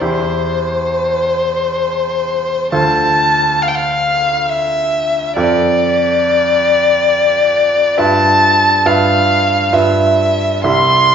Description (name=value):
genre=classical, romantic duo for violin and grand piano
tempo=68 BPM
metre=3/4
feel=uneven beats, rubato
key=C major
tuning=A4 = 441 Hz
part: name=warm violin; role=melody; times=0.0-11.1 s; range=C5 to C6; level=-12 LUFS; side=left 2 dB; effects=none
part: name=bright grand piano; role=accompaniment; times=0.0-11.1 s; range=C2 to E5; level=-17 LUFS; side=right 2 dB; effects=none
room=wet recital hall reverb, RT60 1.4 s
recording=recorded in a church or concert hall, nothing above 7.5 kHz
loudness=-11 LUFS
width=side -7 dB against mid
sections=0.0-11.1 A section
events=none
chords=0.0 C/E; 2.7 Dm7; 5.4 Dm/F; 8.0 G13; 10.6 C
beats=| 0.01 0.89 1.77 | 2.72 3.61 4.49 | 5.36 6.20 7.05 | 7.98 8.85 9.73 | 10.64